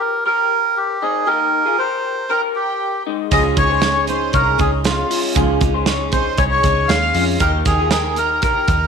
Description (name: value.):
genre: jangly indie pop.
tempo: 118 BPM.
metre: 4/4.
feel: straight.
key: unclear.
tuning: A4 = 440 Hz.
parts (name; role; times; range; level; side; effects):
melodica; melody; 0.0-8.9 s; F4 to F5; -18 LUFS; right 1 dB; slapback echo.
electric guitar through a small old amp; arpeggios; 0.0-8.9 s; Ab3 to Db5; -22 LUFS; left 14 dB; analog chorus, slapback echo.
warm studio violin section; second line; 2.3-8.9 s; F5 to F6; -26 LUFS; right 12 dB; none.
picked steel-string acoustic guitar; accompaniment; 3.3-8.9 s; Db3 to Bb4; -24 LUFS; right 15 dB; none.
vintage muted picked electric bass; bass; 3.3-8.9 s; C2 to F2; -21 LUFS; equal; none.
modern studio drum kit; drums; 3.3-8.8 s; hi-hat, kick drum, snare drum; -20 LUFS; right 3 dB; none.
room: moderate plate reverb, RT60 2.0 s.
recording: 1960s-style stereo with parts hard left and right.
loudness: -15 LUFS.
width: side -6 dB against mid.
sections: 0.0-8.9 A section.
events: none.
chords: 0.0 Eb; 3.1 Dbadd9; 7.4 Eb.